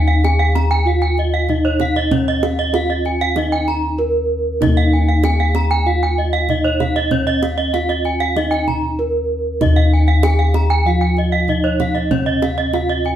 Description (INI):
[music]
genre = Balinese gamelan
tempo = 96 BPM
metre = 4/4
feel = straight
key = Eb slendro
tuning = A4 = 439 Hz
[part]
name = gamelan-type bronze metallophone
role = melody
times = 0.0-13.2 s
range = Db4-45c to Bb4+25c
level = -22 LUFS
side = right 1 dB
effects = none
[part]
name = gamelan-type bronze metallophone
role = arpeggios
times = 0.0-13.2 s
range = Db5-45c to Bb5+25c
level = -23 LUFS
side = left 2 dB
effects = none
[part]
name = gamelan-type bossed gongs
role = bass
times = 0.0-13.2 s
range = Eb2 to F4+30c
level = -18 LUFS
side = left 1 dB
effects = none
[part]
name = gamelan-type bronze metallophone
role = arpeggios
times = 0.1-13.1 s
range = Db5-45c to Ab5-35c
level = -21 LUFS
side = right 5 dB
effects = none
[part]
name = kendang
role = percussion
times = 0.2-13.1 s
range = none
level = -24 LUFS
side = right 5 dB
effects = none
[part]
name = gamelan-type bronze metallophone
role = accompaniment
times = 9.6-13.2 s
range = Db3-45c to F3+30c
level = -25 LUFS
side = equal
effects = none
[sound]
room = wet studio reverb, RT60 0.9 s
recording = band playing live in one room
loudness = -14 LUFS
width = side -10 dB against mid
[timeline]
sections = 0.0-13.2 A section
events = none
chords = none